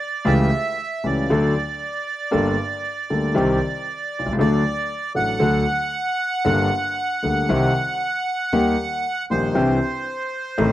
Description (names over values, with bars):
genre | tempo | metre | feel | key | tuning
tango | 116 BPM | 4/4 | rubato | unclear | A4 = 439 Hz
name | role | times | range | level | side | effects
bandoneon | melody | 0.0-10.7 s | C5 to F#5 | -24 LUFS | right 2 dB | slapback echo
warm concert grand piano | accompaniment | 0.2-10.7 s | G1 to A4 | -20 LUFS | left 1 dB | none
upright bass | bass | 0.3-10.7 s | G1 to Eb2 | -27 LUFS | right 2 dB | none
room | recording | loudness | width
little or no reverb | recorded outdoors, with no room sound | -19 LUFS | side -13 dB against mid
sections
0.0-10.7 A section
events
none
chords
0.3 A7/C#; 1.3 D; 2.3 Gmadd9; 3.4 Cm; 4.4 D; 6.5 Gmadd9; 7.5 Cm; 8.5 Eb; 9.6 Cadd9